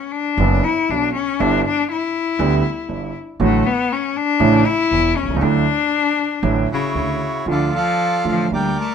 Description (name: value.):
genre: tango.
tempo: 118 BPM.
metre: 4/4.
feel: rubato.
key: D major.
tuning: A4 = 440 Hz.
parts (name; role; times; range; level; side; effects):
warm cello; second line; 0.0-8.9 s; C#3 to E4; -19 LUFS; left 6 dB; none.
warm concert grand piano; accompaniment; 0.4-8.7 s; E1 to G4; -20 LUFS; right 6 dB; none.
upright bass; bass; 0.4-8.7 s; E1 to D2; -22 LUFS; right 1 dB; none.
bandoneon; melody; 6.7-8.9 s; E4 to A5; -21 LUFS; right 2 dB; none.
room: moderate studio reverb, RT60 0.8 s.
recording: minimal, uncompressed stereo recording.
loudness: -16 LUFS.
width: side -7 dB against mid.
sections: 0.0-7.5 A section; 7.5-8.9 B section.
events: cello solo 0.0-7.5.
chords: 0.0 Bmadd9; 1.4 G6; 3.4 D/A; 4.4 A; 5.4 Dadd9; 7.5 Dm.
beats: 0.39 0.89 | 1.40 1.90 2.40 2.90 | 3.40 3.90 4.40 4.91 | 5.41 5.92 6.43 6.95 | 7.48 8.00 8.51.